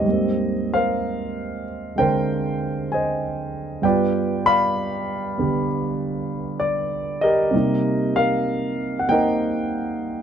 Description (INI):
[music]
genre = solo jazz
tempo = 65 BPM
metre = 4/4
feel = swing 68% on 8ths, rubato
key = C minor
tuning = A4 = 440 Hz
[part]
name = warm concert grand piano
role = solo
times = 0.0-10.2 s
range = G2 to B5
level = -20 LUFS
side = right 1 dB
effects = none
[sound]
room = light reverb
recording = dark, warm production, nothing above 10.8 kHz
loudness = -20 LUFS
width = side -8 dB against mid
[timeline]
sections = 0.0-10.2 A section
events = none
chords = 0.1 Abmaj9; 3.8 G7; 7.5 Cm7